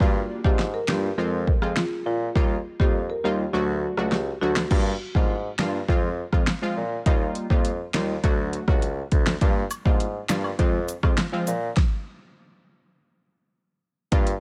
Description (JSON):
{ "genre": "dancehall", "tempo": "102 BPM", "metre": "4/4", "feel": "straight", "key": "G phrygian", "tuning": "A4 = 438 Hz", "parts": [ { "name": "synth brass stab", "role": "accompaniment", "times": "0.0-14.3 s", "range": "F3 to F#4", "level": "-31 LUFS", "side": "equal", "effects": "chorus, sidechain pumping" }, { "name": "warm bassoon", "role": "bass", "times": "0.0-14.4 s", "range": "C#2 to Bb2", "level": "-30 LUFS", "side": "equal", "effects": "none" }, { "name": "deep house drum kit", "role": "drums", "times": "0.0-14.4 s", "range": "crash cymbal, finger snaps, hi-hat, kick drum, rim click, snare drum", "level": "-25 LUFS", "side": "equal", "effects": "none" }, { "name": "marimba with medium mallets", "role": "melody", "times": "0.4-4.5 s", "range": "F4 to Bb4", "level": "-32 LUFS", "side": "equal", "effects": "digital delay" }, { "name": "cabasa and woodblock", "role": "percussion", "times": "9.7-11.6 s", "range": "none", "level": "-37 LUFS", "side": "equal", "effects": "none" } ], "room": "studio reverb", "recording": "none", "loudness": "-24 LUFS", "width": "mono", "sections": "0.0-4.7 A section; 4.7-14.1 B section", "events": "kick muted 3.5-4.7; stop 11.8-14.1", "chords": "0.0 Gm7; 1.2 Fm; 2.4 Ebadd9; 3.5 D; 4.7 Gm7; 5.9 Fm; 7.1 Ebadd9; 8.2 D; 9.4 Gm7; 10.6 Fm; 11.8 N.C." }